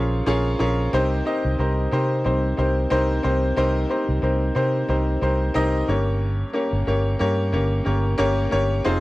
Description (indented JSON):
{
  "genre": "piano-driven pop",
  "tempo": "91 BPM",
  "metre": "4/4",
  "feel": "swing 56% on 16ths",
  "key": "unclear",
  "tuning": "A4 = 441 Hz",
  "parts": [
    { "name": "clear upright piano", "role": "accompaniment", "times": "0.0-9.0 s", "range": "G2 to Eb5", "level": "-22 LUFS", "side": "left 1 dB", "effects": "none" },
    { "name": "vintage muted fingered electric bass", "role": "bass", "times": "0.0-9.0 s", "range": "F1 to C3", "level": "-22 LUFS", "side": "equal", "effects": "none" }
  ],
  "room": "light reverb",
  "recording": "dry, close 1970s-style studio recording",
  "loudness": "-19 LUFS",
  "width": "side -18 dB against mid",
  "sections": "0.0-9.0 A section",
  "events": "none",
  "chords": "0.0 Bbm7; 0.9 Cm7; 5.9 Gdim"
}